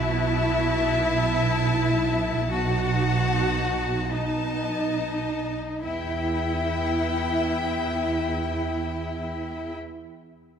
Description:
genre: classical, slow romantic movement for string orchestra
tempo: 33-45 BPM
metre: 4/4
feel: rubato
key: E minor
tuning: A4 = 439 Hz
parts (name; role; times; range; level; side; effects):
- warm chamber violin section; melody; 0.0-9.7 s; G5 to A5; -33 LUFS; left 5 dB; none
- dark studio violin section; second line; 0.0-9.8 s; D#5 to F#5; -31 LUFS; left 4 dB; none
- rich chamber viola section; accompaniment; 0.0-9.7 s; B3 to F#4; -31 LUFS; equal; none
- rich chamber cello section; bass; 0.0-9.7 s; D#4 to F#4; -28 LUFS; equal; none
- warm chamber double bass section; bass; 0.0-9.8 s; B1 to E2; -28 LUFS; right 4 dB; none
room: moderate concert hall reverb, RT60 2.2 s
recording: none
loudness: -23 LUFS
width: side -7 dB against mid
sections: 0.0-5.8 A section; 5.8-10.6 B section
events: slowing down 0.0-5.8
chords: 0.0 B7sus4; 2.5 B7; 5.8 Em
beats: 1.04 2.52 4.11 | 5.83 7.45 9.13

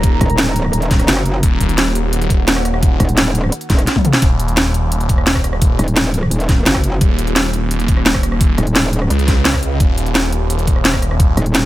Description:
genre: dark technical drum and bass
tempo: 172 BPM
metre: 4/4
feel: straight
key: Eb minor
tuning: A4 = 440 Hz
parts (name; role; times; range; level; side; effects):
- deep dark ambient pad; sustained chords; 0.0-4.2 s; Eb3 to Bb5; -26 LUFS; equal; chorus, built-in reverb, sidechain pumping
- phased detuned saw bass; bass; 0.0-11.4 s; Eb1 to Db2; -17 LUFS; equal; phaser, tube saturation
- drum and bass drum kit; drums; 0.0-11.6 s; hi-hat, rim click, snare drum, toms; -16 LUFS; equal; none
- electronic kick drum; drums; 0.0-11.3 s; none; -15 LUFS; equal; none
- metallic wobble bass; bass; 0.2-9.1, 11.4-11.7 s; Eb1 to Gb1; -16 LUFS; equal; distortion, chorus
room: little or no reverb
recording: none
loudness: -12 LUFS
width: side -15 dB against mid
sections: 0.0-4.2 A section; 4.2-11.7 A section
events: drop 0.0-4.2, 4.2-11.7; drum fill 3.9-4.2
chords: 0.0 Eb5; 4.2 Eb7(no3)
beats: | 0.04 0.38 0.73 1.08 | 1.43 1.78 2.13 2.48 | 2.83 3.17 3.52 3.87 | 4.22 4.57 4.92 5.27 | 5.62 5.96 6.31 6.66 | 7.01 7.36 7.71 8.06 | 8.41 8.76 9.11 9.45 | 9.80 10.15 10.50 10.85 | 11.20 11.55

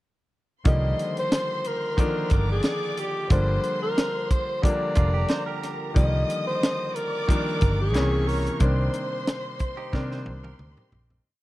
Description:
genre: lush 1970s-style soul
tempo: 91 BPM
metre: 4/4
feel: swing 54% on 16ths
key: C minor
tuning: A4 = 439 Hz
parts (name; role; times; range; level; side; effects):
- bright concert grand piano; accompaniment; 0.6-11.3 s; C3 to D4; -30 LUFS; left 2 dB; none
- warm alto saxophone; melody; 0.7-10.6 s; G4 to Eb5; -28 LUFS; equal; tape echo
- warm studio violin section; second line; 0.7-11.2 s; Bb4 to Eb6; -35 LUFS; left 1 dB; none
- vintage muted fingered electric bass; bass; 0.7-11.2 s; F1 to C3; -24 LUFS; equal; none
- tight funk drum kit; drums; 0.7-11.2 s; hi-hat, kick drum, snare drum, toms; -23 LUFS; equal; none
- direct-recorded clean electric guitar; riff; 5.0-11.2 s; D4 to C5; -36 LUFS; right 8 dB; none
room: little or no reverb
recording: dry, close 1970s-style studio recording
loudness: -22 LUFS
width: side -17 dB against mid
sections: 0.7-11.3 A section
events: fade-out 8.6-11.3; drum fill 9.9-11.3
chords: 0.7 Cm11; 3.3 Gm7; 6.0 Cm11; 8.0 C7b9; 8.6 Cm9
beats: | 0.66 1.32 1.98 2.65 | 3.31 3.97 4.63 5.30 | 5.96 6.62 7.29 7.95 | 8.61 9.27 9.94 10.60

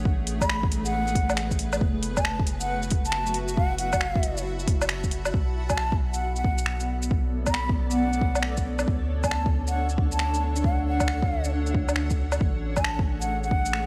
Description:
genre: future garage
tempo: 136 BPM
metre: 4/4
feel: swing 64% on 16ths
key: B dorian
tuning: A4 = 439 Hz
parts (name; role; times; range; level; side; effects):
- granular cloud pad; sustained chords; 0.0-13.9 s; A3 to B5; -34 LUFS; equal; built-in reverb, vintage 12-bit sampler grit, sidechain pumping
- soft dub sub bass; bass; 0.0-13.9 s; F#1 to D2; -32 LUFS; equal; sidechain pumping
- electronic kick drum; drums; 0.1-13.6 s; none; -28 LUFS; equal; none
- deep house drum kit; drums; 0.3-13.8 s; finger snaps, hi-hat, shaker, woodblock; -32 LUFS; equal; none
- breathy hollow jazz flute; melody; 0.4-13.9 s; F#5 to B5; -33 LUFS; equal; digital delay
room: moderate lush hall reverb, RT60 2.1 s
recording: bright 1980s-style digital production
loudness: -25 LUFS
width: mono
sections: 0.0-5.3 A section; 5.3-13.9 B section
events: none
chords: 0.0 Amaj9; 1.8 F#m7; 5.3 Bm9; 8.9 Dmaj7; 12.4 Amaj9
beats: | 0.05 0.49 0.93 1.37 | 1.81 2.25 2.70 3.14 | 3.58 4.02 4.46 4.90 | 5.34 5.79 6.23 6.67 | 7.11 7.55 7.99 8.43 | 8.87 9.31 9.76 10.20 | 10.64 11.08 11.52 11.96 | 12.40 12.84 13.29 13.73

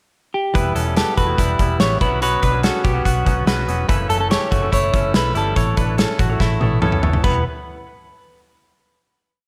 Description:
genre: jangly indie pop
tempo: 143 BPM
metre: 4/4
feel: straight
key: E dorian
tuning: A4 = 441 Hz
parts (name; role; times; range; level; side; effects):
- semi-hollow electric guitar; melody; 0.3-7.4 s; F#4 to C#5; -25 LUFS; equal; slapback echo
- semi-hollow electric guitar; accompaniment; 0.5-7.4 s; F#2 to C#5; -28 LUFS; equal; slapback echo
- direct-recorded clean electric guitar; arpeggios; 0.5-7.4 s; G3 to C#5; -27 LUFS; equal; slapback echo
- vintage muted fingered electric bass; bass; 0.5-7.4 s; E1 to C#2; -24 LUFS; equal; none
- loose indie drum kit; drums; 0.6-7.3 s; crash cymbal, hi-hat, kick drum, snare drum, toms; -22 LUFS; equal; none
room: light reverb, small room ambience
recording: none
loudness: -18 LUFS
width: mono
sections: 0.0-0.5 pickup bar; 0.5-7.2 verse; 7.2-8.9 final chord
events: drum fill 6.4-7.2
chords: 0.0 N.C.; 0.5 Em; 2.0 Bsus2; 3.9 F#m7; 5.6 Aadd9; 7.2 Em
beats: 0.13 | 0.55 0.96 1.38 1.80 | 2.22 2.64 3.06 3.47 | 3.89 4.31 4.73 5.15 | 5.57 5.99 6.41 6.83 | 7.24

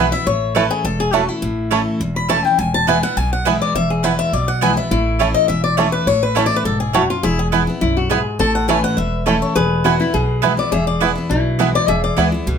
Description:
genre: bluegrass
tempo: 207 BPM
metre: 4/4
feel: straight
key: A major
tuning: A4 = 443 Hz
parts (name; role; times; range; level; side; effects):
- bluegrass banjo; melody; 0.0-12.2 s; A3 to E4; -21 LUFS; right 7 dB; none
- picked swing-style acoustic guitar; melody; 0.0-12.2 s; E4 to B5; -19 LUFS; left 4 dB; none
- picked steel-string acoustic guitar; accompaniment; 0.0-12.6 s; E2 to E4; -21 LUFS; left 1 dB; none
- mandolin; stabs; 0.0-12.3 s; A3 to A5; -19 LUFS; right 8 dB; none
- upright bass; bass; 0.0-12.6 s; E1 to D2; -23 LUFS; right 1 dB; none
- lap resonator guitar; second line; 4.9-12.6 s; E4 to B4; -23 LUFS; left 4 dB; none
room: moderate studio ambience, RT60 0.5 s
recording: none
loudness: -15 LUFS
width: side -7 dB against mid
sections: 0.0-12.6 A section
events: none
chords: 0.3 A; 2.6 E; 4.9 A; 7.2 E; 8.4 A; 9.6 E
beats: | 0.27 0.56 0.85 1.14 | 1.43 1.72 2.01 2.30 | 2.59 2.88 3.17 3.46 | 3.75 4.04 4.33 4.62 | 4.91 5.20 5.49 5.78 | 6.07 6.36 6.65 6.94 | 7.23 7.53 7.82 8.11 | 8.40 8.69 8.98 9.27 | 9.56 9.85 10.14 10.43 | 10.72 11.01 11.30 11.59 | 11.88 12.17 12.46

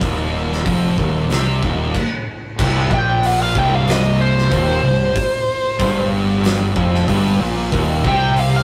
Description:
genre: stoner and doom metal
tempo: 93 BPM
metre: 4/4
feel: straight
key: C minor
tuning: A4 = 440 Hz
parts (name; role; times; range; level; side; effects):
- thick fuzz guitar; riff; 0.0-8.6 s; C2 to C3; -22 LUFS; equal; distortion
- thick fuzz guitar; riff; 0.0-8.6 s; C2 to C3; -28 LUFS; equal; none
- fuzz fingered electric bass; bass; 0.0-8.6 s; C1 to C2; -25 LUFS; equal; overdrive
- oversized low-tuned drum kit; drums; 0.0-8.5 s; crash cymbal, hi-hat, kick drum, snare drum; -25 LUFS; equal; none
- crunchy overdriven guitar; riff; 2.6-8.6 s; C2 to C3; -24 LUFS; equal; none
- fuzz lead guitar; melody; 2.9-8.6 s; C5 to G5; -21 LUFS; equal; wah, distortion
room: moderate stone room reverb, RT60 1.1 s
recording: rough rehearsal-room recording, warm saturation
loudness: -17 LUFS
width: mono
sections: 0.0-2.6 A section; 2.6-8.6 B section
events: stop 2.0-2.6; lead electric guitar solo 2.6-8.6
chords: 0.0 Cm; 7.7 Eb5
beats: | 0.02 0.66 1.31 1.95 | 2.59 3.24 3.88 4.52 | 5.16 5.81 6.45 7.09 | 7.73 8.38

